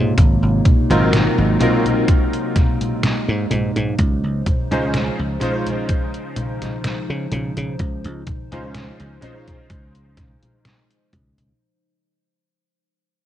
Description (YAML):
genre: vaporwave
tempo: 63 BPM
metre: 4/4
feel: swing 53% on 16ths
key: Db major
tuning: A4 = 439 Hz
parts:
  - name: bright electric grand piano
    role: accompaniment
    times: 0.0-11.6 s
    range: Gb3 to C5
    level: -23 LUFS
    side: equal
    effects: ensemble chorus, analog delay
  - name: warbly tape-like pad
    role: sustained chords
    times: 0.0-11.6 s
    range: C3 to C5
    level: -24 LUFS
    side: equal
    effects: chorus, built-in reverb, vintage 12-bit sampler grit
  - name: dry thumbed slap bass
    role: bass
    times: 0.0-11.5 s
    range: Ab1 to Db3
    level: -21 LUFS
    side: equal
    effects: none
  - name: detuned 8-bit digital drum machine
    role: drums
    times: 0.2-11.6 s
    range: congas, hi-hat, snare drum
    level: -24 LUFS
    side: equal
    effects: none
  - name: electronic kick drum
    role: drums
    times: 0.2-11.3 s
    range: none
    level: -17 LUFS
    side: equal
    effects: none
room: light reverb, digital ambience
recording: cassette tape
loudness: -16 LUFS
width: side -12 dB against mid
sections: 0.0-11.6 A section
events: fade-out 1.4-11.6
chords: 0.0 Ab13; 4.0 Dbmaj9